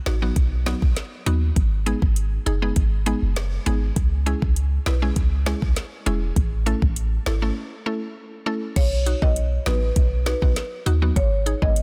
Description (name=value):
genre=dancehall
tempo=100 BPM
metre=4/4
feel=straight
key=unclear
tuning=A4 = 440 Hz
part: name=mallet-like synth pluck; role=accompaniment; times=0.1-11.7 s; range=F#3 to B4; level=-31 LUFS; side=equal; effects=chorus, sidechain pumping
part: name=clean 808-style bass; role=bass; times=0.1-11.8 s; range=E1 to D#2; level=-24 LUFS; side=equal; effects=none
part: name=afro-pop drum kit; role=drums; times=0.1-11.8 s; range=crash cymbal, hi-hat, kick drum, rim click, snare drum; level=-25 LUFS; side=equal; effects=soft clipping on snare
part: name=marimba with medium mallets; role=melody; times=8.8-11.7 s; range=B4 to D#5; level=-30 LUFS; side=equal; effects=none
room=digital ambience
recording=dense, heavily limited modern master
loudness=-22 LUFS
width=mono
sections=0.0-8.8 A section; 8.8-11.8 B section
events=break 7.6-8.8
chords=0.0 B; 1.6 G#m; 4.0 C#m; 6.4 A; 8.8 B; 11.2 G#m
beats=0.36 0.96 | 1.56 2.16 2.76 3.36 | 3.96 4.56 5.16 5.76 | 6.36 6.96 7.56 8.16 | 8.76 9.36 9.96 10.56 | 11.16 11.76